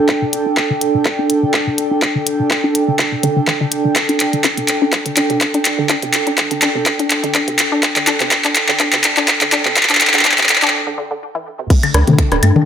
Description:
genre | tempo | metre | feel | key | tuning
minimal techno | 124 BPM | 4/4 | swing 54% on 16ths | unclear | A4 = 440 Hz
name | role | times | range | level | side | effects
resonant blip pluck | riff | 0.0-12.6 s | C3 to D4 | -20 LUFS | left 1 dB | chorus, sidechain pumping, tape echo
airy breathy pad | texture | 0.0-12.7 s | D4 to G5 | -19 LUFS | right 2 dB | chorus, sidechain pumping
electronic kick drum | drums | 0.1-12.3 s | none | -16 LUFS | equal | high-pass filter on kick
minimal click drum kit | drums | 0.1-12.5 s | crash cymbal, finger snaps, handclaps, hi-hat | -15 LUFS | equal | none
booming analog drum machine | percussion | 11.7-12.6 s | congas, rim click, toms, woodblock | -14 LUFS | left 3 dB | dub echo
rubbery square bass | bass | 11.9-12.5 s | D1 to G2 | -12 LUFS | equal | sidechain pumping
room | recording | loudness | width
moderate digital room reverb, RT60 1.0 s | high-pass filter | -12 LUFS | side -8 dB against mid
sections
0.0-11.7 A section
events
build-up 0.0-11.7; drum fill 0.0-10.7; filter sweep on synth arpeggio sound 0.0-11.7; filter sweep 0.0-11.7; break 10.7-11.7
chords
0.0 Dsus4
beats
| 0.09 0.57 1.06 1.54 | 2.02 2.51 2.99 3.48 | 3.96 4.44 4.93 5.41 | 5.90 6.38 6.86 7.35 | 7.83 8.31 8.80 9.28 | 9.77 10.25 10.73 11.22 | 11.70 12.19

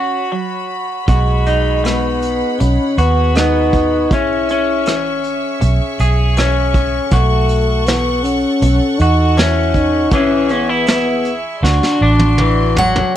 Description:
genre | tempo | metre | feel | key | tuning
acoustic folk-pop ballad | 80 BPM | 4/4 | straight | unclear | A4 = 439 Hz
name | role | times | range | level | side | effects
mellow French horn | second line | 0.0-12.7 s | G#3 to E4 | -18 LUFS | left 1 dB | none
electric guitar through a small old amp | accompaniment | 0.0-13.2 s | B2 to G#4 | -18 LUFS | left 1 dB | none
warm symphonic string section | sustained chords | 0.0-13.1 s | F#4 to C#6 | -25 LUFS | equal | none
vintage muted fingered electric bass | bass | 1.1-13.0 s | A1 to E2 | -16 LUFS | right 1 dB | none
vintage brush drum kit | drums | 1.1-13.1 s | hi-hat, kick drum, rim click, snare drum, toms | -19 LUFS | right 1 dB | none
picked steel-string acoustic guitar | melody | 12.8-13.1 s | F#5 | -14 LUFS | left 1 dB | none
room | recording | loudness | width
little or no reverb | none | -12 LUFS | side -11 dB against mid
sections
0.0-13.2 A section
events
French horn solo 0.0-13.2; drum fill 11.6-13.2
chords
0.0 Bsus2; 1.1 G#m7/B; 4.1 E6/B; 7.1 A6/B; 10.1 E6/B; 11.6 D7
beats
0.31 | 1.08 1.84 2.60 3.36 | 4.11 4.87 5.62 6.37 | 7.12 7.87 8.63 9.38 | 10.12 10.87 11.63 12.39 | 13.15

